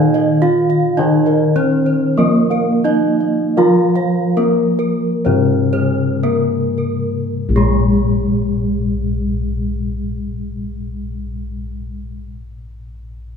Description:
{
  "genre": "gamelan",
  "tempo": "50-107 BPM",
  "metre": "4/4",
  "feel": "straight",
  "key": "Bb slendro",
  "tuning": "A4 = 439 Hz",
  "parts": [
    { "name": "gamelan-type bronze metallophone", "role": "melody", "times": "0.0-12.2 s", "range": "Ab3-40c to F4+20c", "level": "-19 LUFS", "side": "right 2 dB", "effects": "none" },
    { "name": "gamelan-type bronze metallophone", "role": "accompaniment", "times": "0.0-12.2 s", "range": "C3+40c to Bb3", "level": "-19 LUFS", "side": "left 1 dB", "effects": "none" },
    { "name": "gamelan-type bossed gongs", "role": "arpeggios", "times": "0.0-12.2 s", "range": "Ab4-40c to F5+20c", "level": "-22 LUFS", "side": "left 6 dB", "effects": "none" },
    { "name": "gamelan-type bronze metallophone", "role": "arpeggios", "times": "0.0-12.2 s", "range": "Ab4-40c to F5+20c", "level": "-24 LUFS", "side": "right 4 dB", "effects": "none" },
    { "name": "gamelan-type bossed gongs", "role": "bass", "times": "0.0-12.2 s", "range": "Bb1 to Bb4", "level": "-21 LUFS", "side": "left 2 dB", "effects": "none" }
  ],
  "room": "moderate recital hall reverb, RT60 1.6 s",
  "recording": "minimal, uncompressed stereo recording",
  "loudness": "-14 LUFS",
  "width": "side -6 dB against mid",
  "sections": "0.0-7.4 A section; 7.4-12.2 B section",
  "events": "slowing down 1.0-7.4",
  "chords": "none",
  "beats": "0.42 | 0.98 1.56 2.18 2.85 | 3.58 4.38 5.26 6.25 | 7.37 8.57 9.77 10.97"
}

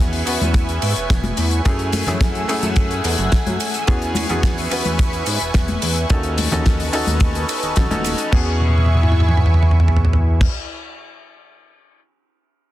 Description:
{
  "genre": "nu-disco, nu disco",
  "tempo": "108 BPM",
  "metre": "4/4",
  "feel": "straight",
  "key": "E major",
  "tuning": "A4 = 439 Hz",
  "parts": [
    { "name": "bright concert grand piano", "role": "accompaniment", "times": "0.0-10.5 s", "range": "A3 to B4", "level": "-25 LUFS", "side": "equal", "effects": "tape echo" },
    { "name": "lush unison pad", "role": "sustained chords", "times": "0.0-10.5 s", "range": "A3 to E6", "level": "-26 LUFS", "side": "right 1 dB", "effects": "chorus, phaser, sidechain pumping" },
    { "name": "chorused synth bass", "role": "bass", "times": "0.0-10.5 s", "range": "D#1 to G#2", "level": "-20 LUFS", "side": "equal", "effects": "sidechain pumping" },
    { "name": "damped 70s drum kit", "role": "drums", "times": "0.1-8.3 s", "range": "hi-hat, ride cymbal, snare drum", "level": "-25 LUFS", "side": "left 1 dB", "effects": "small room ambience" },
    { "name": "maracas and congas", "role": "percussion", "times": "0.3-8.3 s", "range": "none", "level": "-27 LUFS", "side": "left 3 dB", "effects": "none" },
    { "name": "damped 70s drum kit", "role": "drums", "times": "0.5-12.0 s", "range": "crash cymbal, kick drum, toms", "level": "-18 LUFS", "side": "equal", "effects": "small room ambience" }
  ],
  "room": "small room ambience",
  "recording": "dense, heavily limited modern master",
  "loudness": "-15 LUFS",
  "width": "side -14 dB against mid",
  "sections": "0.0-8.3 A section; 8.3-10.5 B section",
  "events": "drop 0.0-8.3; drum fill 8.6-10.4",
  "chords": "0.0 E6; 1.7 F#m9; 3.9 E6; 6.1 B9/D#; 8.3 E6",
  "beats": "0.55 1.10 | 1.66 2.21 2.77 3.32 | 3.88 4.43 4.99 5.54 | 6.10 6.66 7.21 7.77 | 8.32 8.88 9.43 9.99"
}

